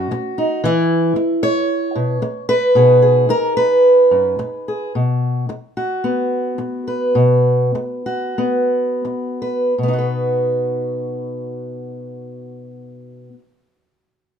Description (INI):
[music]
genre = folk, solo fingerstyle acoustic guitar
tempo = 80-115 BPM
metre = 4/4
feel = rubato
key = B major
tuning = A4 = 443 Hz
[part]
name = fingerpicked steel-string acoustic guitar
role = solo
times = 0.0-13.5 s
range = F#2 to C#5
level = -15 LUFS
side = equal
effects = none
[sound]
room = moderate studio reverb, RT60 0.8 s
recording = minimal, uncompressed stereo recording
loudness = -15 LUFS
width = side -8 dB against mid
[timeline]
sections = 0.0-4.9 A section; 4.9-9.8 B section; 9.8-14.4 C section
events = slowing down 4.9-9.8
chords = 0.0 B (rootless); 0.6 E5; 2.8 B6; 4.9 B5; 9.8 B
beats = 0.12 | 0.64 1.16 1.69 2.22 | 2.75 3.29 3.84 4.39 | 4.95 5.49 6.03 6.58 | 7.15 7.75 8.38 9.05 | 9.78 10.52 11.27 12.00 | 12.74 13.46